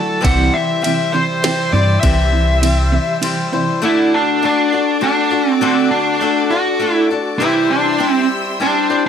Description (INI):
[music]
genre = folk rock and heartland rock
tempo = 101 BPM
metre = 3/4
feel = straight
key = D mixolydian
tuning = A4 = 440 Hz
[part]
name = dark smooth lead guitar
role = melody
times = 0.0-9.1 s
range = C4 to F#5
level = -16 LUFS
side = right 1 dB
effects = overdrive
[part]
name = picked swing-style acoustic guitar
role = accompaniment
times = 0.0-9.1 s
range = C3 to C5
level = -19 LUFS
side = left 4 dB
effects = none
[part]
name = rich studio string section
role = sustained chords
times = 0.0-9.1 s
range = F#4 to E6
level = -26 LUFS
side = left 1 dB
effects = none
[part]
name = electric guitar through a small old amp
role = riff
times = 0.0-3.8 s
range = C3 to G3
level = -21 LUFS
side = right 5 dB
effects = tremolo
[part]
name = fingered electric bass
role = bass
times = 0.2-3.0 s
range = C2 to G2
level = -15 LUFS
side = equal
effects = none
[part]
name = glitchy drum kit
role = drums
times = 0.2-3.4 s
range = kick drum, ride cymbal, snare drum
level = -23 LUFS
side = right 1 dB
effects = overdrive
[sound]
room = moderate large studio reverb, RT60 1.3 s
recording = none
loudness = -13 LUFS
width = side -8 dB against mid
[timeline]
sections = 0.0-3.8 A section; 3.8-9.1 B section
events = break 2.6-3.8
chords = 0.2 C; 3.8 D; 7.4 C